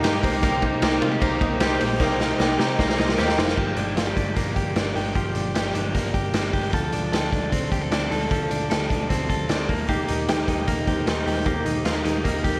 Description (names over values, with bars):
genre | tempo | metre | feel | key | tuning
jangly indie pop | 152 BPM | 4/4 | straight | G minor | A4 = 440 Hz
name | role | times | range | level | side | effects
picked twelve-string acoustic guitar | accompaniment | 0.0-3.6 s | C3 to G4 | -30 LUFS | equal | slapback echo
warbly lo-fi synth keys | accompaniment | 0.0-3.6, 9.9-12.6 s | Eb4 to C6 | -31 LUFS | equal | chorus, slapback echo
direct-recorded clean electric guitar | arpeggios | 0.0-12.6 s | F3 to A4 | -29 LUFS | equal | slapback echo
vintage muted picked electric bass | bass | 0.0-12.6 s | F1 to C3 | -32 LUFS | equal | none
raw garage drum kit | drums | 0.0-12.5 s | crash cymbal, hi-hat, kick drum, ride cymbal, snare drum | -26 LUFS | equal | none
room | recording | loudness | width
moderate lush hall reverb, RT60 1.8 s, studio reverb | big arena sound | -23 LUFS | mono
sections
0.0-3.6 A section; 3.6-12.6 B section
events
drum fill 2.0-3.6; synth keys fill 2.8-3.6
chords
0.2 Cm7; 3.6 Gm7; 6.7 Dm7; 9.7 Eb